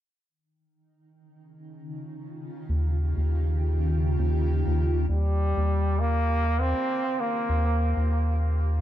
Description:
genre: ambient dub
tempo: free time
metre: none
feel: none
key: Eb mixolydian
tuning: A4 = 440 Hz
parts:
  - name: granular cloud pad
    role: sustained chords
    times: 1.6-8.8 s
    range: Db3 to G4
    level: -34 LUFS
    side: equal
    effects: built-in reverb
  - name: round analog bass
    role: bass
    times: 2.7-8.8 s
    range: Eb2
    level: -24 LUFS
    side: equal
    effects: none
  - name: brilliant trombone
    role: melody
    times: 5.1-8.4 s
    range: G3 to C4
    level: -27 LUFS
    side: equal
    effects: dub echo
room: light reverb, small room reverb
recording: dark, warm production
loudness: -23 LUFS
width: side -12 dB against mid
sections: 0.3-5.1 A section; 5.1-8.8 B section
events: fade-in on ambient pad 0.3-5.1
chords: 0.3 Eb9

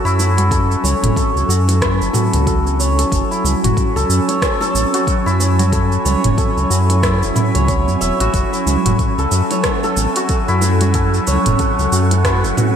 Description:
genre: organic downtempo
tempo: 92 BPM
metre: 4/4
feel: swing 59% on 16ths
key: F# minor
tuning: A4 = 440 Hz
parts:
  - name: ethereal airy pad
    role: sustained chords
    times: 0.0-12.8 s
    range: F#3 to G#5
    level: -21 LUFS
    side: right 1 dB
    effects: ensemble chorus, built-in reverb, sidechain pumping
  - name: santur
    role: arpeggios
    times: 0.0-12.8 s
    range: E4 to E5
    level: -19 LUFS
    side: left 1 dB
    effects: digital delay
  - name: round analog bass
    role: bass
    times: 0.0-12.5 s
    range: E1 to F#2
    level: -16 LUFS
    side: equal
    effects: sidechain pumping
  - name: organic electronic drum kit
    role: drums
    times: 0.1-12.7 s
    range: cabasa, hi-hat, rim click, toms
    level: -21 LUFS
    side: right 1 dB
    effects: gated reverb
  - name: bongos and congas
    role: percussion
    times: 0.2-12.7 s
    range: none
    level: -28 LUFS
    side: right 2 dB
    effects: none
  - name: electronic kick drum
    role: drums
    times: 0.5-12.4 s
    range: none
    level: -20 LUFS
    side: equal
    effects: none
  - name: wind-like tuned noise texture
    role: texture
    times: 9.3-12.8 s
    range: F#5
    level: -30 LUFS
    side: right 2 dB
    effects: built-in reverb
room: moderate lush hall reverb, RT60 2.6 s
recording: bright 1980s-style digital production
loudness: -13 LUFS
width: side -8 dB against mid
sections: 0.0-12.8 A section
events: none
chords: 0.0 F#m7

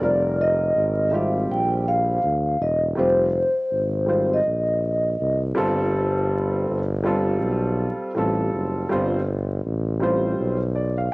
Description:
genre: hip hop, jazz-hop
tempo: 81 BPM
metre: 4/4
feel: swing 60% on 16ths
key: unclear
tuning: A4 = 438 Hz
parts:
  - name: vibraphone with soft mallets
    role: melody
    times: 0.0-5.4 s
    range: C5 to G5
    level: -21 LUFS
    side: equal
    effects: cassette tape
  - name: dark upright piano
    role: accompaniment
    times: 0.0-11.1 s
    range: G3 to F5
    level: -24 LUFS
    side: equal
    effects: cassette tape
  - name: warm tuba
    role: bass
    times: 0.0-11.1 s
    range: E1 to D2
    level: -24 LUFS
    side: equal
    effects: none
room: small room ambience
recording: home recording on cassette, vinyl crackle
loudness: -20 LUFS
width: side -24 dB against mid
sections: 0.0-11.1 A section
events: upright piano fill 10.4-11.1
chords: 0.0 F9sus4; 5.6 G9sus4

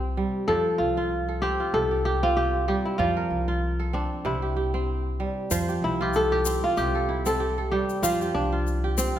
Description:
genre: west african traditional, West African string and xylophone music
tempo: 95 BPM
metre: 4/4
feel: swing 55% on 16ths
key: F major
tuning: A4 = 437 Hz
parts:
  - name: kora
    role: melody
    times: 0.0-9.2 s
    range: C4 to C5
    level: -25 LUFS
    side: equal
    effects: none
  - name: kora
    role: arpeggios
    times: 0.0-9.2 s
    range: C3 to D5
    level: -28 LUFS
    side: right 3 dB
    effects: none
  - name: upright bass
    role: bass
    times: 0.0-9.1 s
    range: C2 to F2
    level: -30 LUFS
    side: left 1 dB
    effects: none
  - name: tube shaker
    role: percussion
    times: 5.5-9.1 s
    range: none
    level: -33 LUFS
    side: left 7 dB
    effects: none
room: moderate scoring stage reverb, RT60 1.7 s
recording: recorded in a church or concert hall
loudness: -23 LUFS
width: side -11 dB against mid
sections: 0.0-5.5 A section; 5.5-9.2 B section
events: kora solo 5.5-9.2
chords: 0.5 F; 1.7 C5; 3.0 F; 4.2 C; 5.5 F5; 6.8 C; 8.0 F5

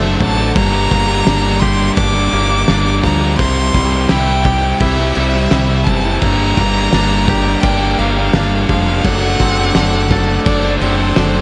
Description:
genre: post-rock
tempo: 85 BPM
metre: 4/4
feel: straight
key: G dorian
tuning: A4 = 440 Hz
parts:
  - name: bright violin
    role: melody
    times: 0.0-11.4 s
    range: C5 to D6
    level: -22 LUFS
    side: equal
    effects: digital delay
  - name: evolving wavetable pad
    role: sustained chords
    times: 0.0-11.4 s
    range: Bb4 to E6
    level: -32 LUFS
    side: equal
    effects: none
  - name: twangy electric guitar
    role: arpeggios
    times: 0.0-11.4 s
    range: G2 to A4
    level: -25 LUFS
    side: equal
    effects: digital delay
  - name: sludgy distorted guitar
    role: riff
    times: 0.0-11.4 s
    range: C3 to A4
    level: -20 LUFS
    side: equal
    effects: overdrive
  - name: growling fingered electric bass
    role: bass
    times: 0.0-11.4 s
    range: F1 to D2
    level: -20 LUFS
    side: equal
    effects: overdrive
  - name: loose indie drum kit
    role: drums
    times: 0.2-11.3 s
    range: crash cymbal, kick drum, snare drum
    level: -20 LUFS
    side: equal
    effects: none
room: light reverb, small room ambience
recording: nothing above 10.4 kHz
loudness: -14 LUFS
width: mono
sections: 0.0-11.4 A section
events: none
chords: 0.0 D7/F#; 0.6 Gm7; 3.4 C; 6.2 Gm7; 9.0 D7/F#

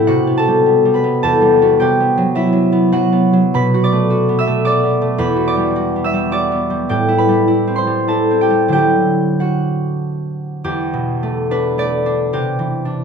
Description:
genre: classical, solo harp piece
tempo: 91-114 BPM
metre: 3/4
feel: rubato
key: E minor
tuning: A4 = 440 Hz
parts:
  - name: concert harp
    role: solo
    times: 0.0-13.0 s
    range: E2 to E6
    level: -13 LUFS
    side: equal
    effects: none
room: moderate recital hall reverb, RT60 1.4 s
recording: minimal, uncompressed stereo recording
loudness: -13 LUFS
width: side -6 dB against mid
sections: 0.0-10.6 A section; 10.6-13.0 B section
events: none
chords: 0.1 Cmaj7#11; 1.2 Emadd9; 1.8 Cmaj7#11; 3.5 Bm7; 5.2 Em9; 6.9 Am9; 8.7 Dadd9; 10.6 Em11; 12.3 Cmaj9

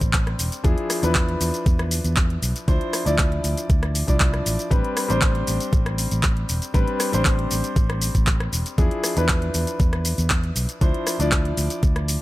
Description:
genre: nu-disco, nu disco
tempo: 118 BPM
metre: 4/4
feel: straight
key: A minor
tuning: A4 = 439 Hz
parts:
  - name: clear grand piano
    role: accompaniment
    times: 0.0-12.2 s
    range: F3 to D5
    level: -26 LUFS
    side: left 1 dB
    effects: sidechain pumping, tape echo
  - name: fingered electric bass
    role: bass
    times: 0.0-12.2 s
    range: E1 to E2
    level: -24 LUFS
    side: equal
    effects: none
  - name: electronic kick drum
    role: drums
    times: 0.0-11.9 s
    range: none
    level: -20 LUFS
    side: equal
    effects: overdrive
  - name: pop drum kit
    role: drums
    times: 0.0-12.2 s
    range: handclaps, hi-hat, rim click, shaker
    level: -26 LUFS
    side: equal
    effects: overdrive
room: digital ambience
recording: none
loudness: -19 LUFS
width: side -17 dB against mid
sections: 0.0-12.2 A section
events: none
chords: 0.0 Am11; 0.6 E7b9; 2.7 Dm9; 4.7 Am11; 8.8 E7b9; 10.8 Dm9

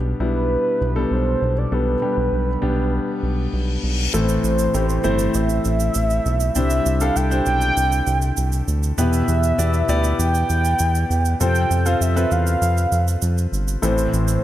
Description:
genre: piano-driven pop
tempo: 99 BPM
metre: 4/4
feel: straight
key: unclear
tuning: A4 = 440 Hz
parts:
  - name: clear grand piano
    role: accompaniment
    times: 0.0-14.4 s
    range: A2 to D5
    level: -23 LUFS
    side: left 2 dB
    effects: none
  - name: round analog bass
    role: bass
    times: 0.0-14.4 s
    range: G1 to F2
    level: -20 LUFS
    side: equal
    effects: none
  - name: mellow horn-like synth lead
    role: melody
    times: 0.2-14.4 s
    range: B4 to G5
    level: -23 LUFS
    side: right 2 dB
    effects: chorus
  - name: reverse cymbal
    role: sound effects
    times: 3.5-4.1 s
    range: none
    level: -30 LUFS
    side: left 5 dB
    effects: none
  - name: tube shaker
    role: percussion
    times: 4.1-14.4 s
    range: none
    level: -31 LUFS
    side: right 10 dB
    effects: none
room: light reverb, studio ambience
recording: none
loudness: -17 LUFS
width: side -13 dB against mid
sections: 0.0-4.1 A section; 4.1-14.4 B section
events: reverse cymbal 3.5-4.1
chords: 0.0 G/B; 4.1 Am; 6.6 Cadd9; 9.0 Em; 11.4 F; 13.8 Am

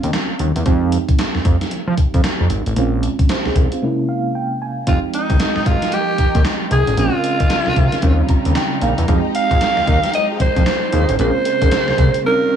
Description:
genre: R&B, new jack swing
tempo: 114 BPM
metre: 4/4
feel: swing 62% on 16ths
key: F minor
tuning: A4 = 439 Hz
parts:
  - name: breathy alto saxophone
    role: melody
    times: 0.0-0.1, 4.9-12.6 s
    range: Eb4 to F5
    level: -19 LUFS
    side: right 1 dB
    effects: tape echo
  - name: mellow FM electric piano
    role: accompaniment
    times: 0.0-12.6 s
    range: C3 to Bb5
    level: -23 LUFS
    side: right 4 dB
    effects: chorus, tremolo
  - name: fat analog bass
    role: bass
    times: 0.0-12.1 s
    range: F1 to F3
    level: -17 LUFS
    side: equal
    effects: none
  - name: gated 80s digital drum machine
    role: drums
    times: 0.0-12.2 s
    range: handclaps, hi-hat, kick drum, snare drum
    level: -18 LUFS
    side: equal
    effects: gated reverb, gated reverb snare
  - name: warm studio string section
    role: sustained chords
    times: 4.9-12.6 s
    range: Db3 to G4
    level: -25 LUFS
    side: right 1 dB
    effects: none
  - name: mellow synth brass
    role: stabs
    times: 9.1-11.7 s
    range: Db4 to Eb5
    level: -25 LUFS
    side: left 1 dB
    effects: chorus, tape echo
room: little or no reverb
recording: none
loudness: -14 LUFS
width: side -8 dB against mid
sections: 0.0-4.9 A section; 4.9-12.6 B section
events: break 3.8-4.9; FM electric piano fill 3.8-4.9, 8.0-9.1; drums muted 12.2-12.6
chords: 0.0 Eb13; 0.7 Fm9; 2.8 Bbm9; 3.8 C7b9b13; 4.9 Fm9; 7.0 Bbm9; 8.0 Eb13; 9.1 Fm9; 11.2 Bbm9

